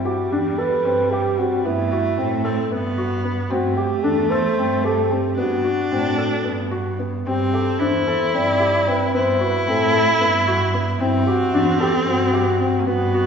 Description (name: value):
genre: contemporary instrumental, chamber music in an uneven meter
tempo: 225 BPM (eighths)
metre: 7/8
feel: straight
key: unclear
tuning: A4 = 440 Hz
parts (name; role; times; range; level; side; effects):
- breathy flugelhorn; melody; 0.0-13.3 s; E4 to D5; -22 LUFS; equal; none
- clear viola; second line; 0.0-13.3 s; G3 to E4; -23 LUFS; equal; none
- warm cello; bass; 0.0-13.3 s; E2 to A2; -25 LUFS; right 2 dB; none
- felt-muted upright piano; arpeggios; 0.1-13.3 s; B3 to A4; -24 LUFS; left 2 dB; none
room: wet recital hall reverb, RT60 1.6 s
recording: heard from further back in the room, nothing above 7.6 kHz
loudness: -17 LUFS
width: side -6 dB against mid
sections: 0.0-13.3 A section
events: none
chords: 0.0 Am11; 1.7 Gmaj13; 3.5 Am7; 5.4 D6/G; 7.3 Am7; 9.1 Gmaj13; 11.0 Am7